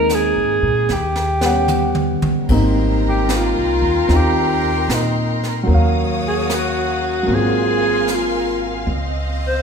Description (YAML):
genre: jazz ballad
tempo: 75 BPM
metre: 4/4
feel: swing 67% on 8ths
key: Ab major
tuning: A4 = 440 Hz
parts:
  - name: breathy alto saxophone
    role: melody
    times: 0.0-9.6 s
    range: Eb4 to C5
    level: -19 LUFS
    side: equal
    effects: none
  - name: warm grand piano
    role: accompaniment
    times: 0.0-8.9 s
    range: Gb3 to F#5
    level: -21 LUFS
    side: equal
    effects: none
  - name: upright bass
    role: bass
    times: 0.0-9.6 s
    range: Ab1 to Bb2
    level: -20 LUFS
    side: equal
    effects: none
  - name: jazz brush drum kit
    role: drums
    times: 0.1-9.6 s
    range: brushed snare drum, hi-hat, kick drum, ride cymbal, snare drum, toms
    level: -25 LUFS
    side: right 2 dB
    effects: none
  - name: warm studio string section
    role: sustained chords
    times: 2.5-9.6 s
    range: C4 to Eb6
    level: -24 LUFS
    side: equal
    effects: none
room: moderate scoring stage reverb, RT60 2.0 s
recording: recorded in a church or concert hall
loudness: -15 LUFS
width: side -6 dB against mid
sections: 0.0-2.5 A section; 2.5-9.6 B section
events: drum fill 0.9-2.5; alto saxophone solo 2.5-9.6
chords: 0.0 Abadd9; 0.9 Eb7alt; 2.5 Abmaj9; 5.7 Ebm9; 7.3 Ab13; 8.9 Dbmaj9